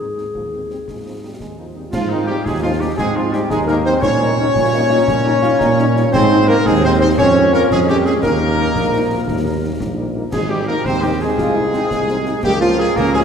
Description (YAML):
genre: military-style march for wind band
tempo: 114 BPM (dotted quarters)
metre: 6/8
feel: straight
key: Ab major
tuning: A4 = 440 Hz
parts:
  - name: mellow trumpet section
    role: melody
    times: 0.0-13.2 s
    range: Eb4 to Db5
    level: -23 LUFS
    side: left 1 dB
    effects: none
  - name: dark woodwind section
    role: second line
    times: 0.0-13.2 s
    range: Eb4 to Db5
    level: -21 LUFS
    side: left 1 dB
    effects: none
  - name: mellow French horn section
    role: accompaniment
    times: 0.0-13.2 s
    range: Eb3 to F4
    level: -26 LUFS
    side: left 3 dB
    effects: none
  - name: mellow tuba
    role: bass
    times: 0.0-13.2 s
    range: Ab1 to Bb2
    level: -19 LUFS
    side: right 2 dB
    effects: none
  - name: concert snare drum, concert bass drum and clash cymbals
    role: drums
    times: 0.2-13.2 s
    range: none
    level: -26 LUFS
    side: equal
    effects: none
  - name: clear euphonium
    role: second line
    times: 0.4-13.2 s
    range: Eb3 to Db4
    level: -21 LUFS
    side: equal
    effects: none
  - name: dark trombone section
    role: sustained chords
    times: 1.9-13.2 s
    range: Ab3 to F4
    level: -23 LUFS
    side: right 2 dB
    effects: none
room: wet church reverb, RT60 2.6 s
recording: recorded in a church or concert hall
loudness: -14 LUFS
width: side -7 dB against mid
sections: 0.0-1.9 A section; 1.9-13.2 A section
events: none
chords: 0.0 Ab; 4.0 Eb7/Bb; 6.1 Ab; 7.2 Db/F; 8.2 Ebsus4; 9.3 Eb; 10.3 Ab; 11.4 Ab/C; 12.4 Bbm/Db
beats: 0.35 | 0.88 1.40 | 1.93 2.46 | 2.98 3.51 | 4.03 4.56 | 5.08 5.61 | 6.13 6.66 | 7.18 7.71 | 8.23 8.76 | 9.28 9.81 | 10.33 10.86 | 11.38 11.91 | 12.43 12.96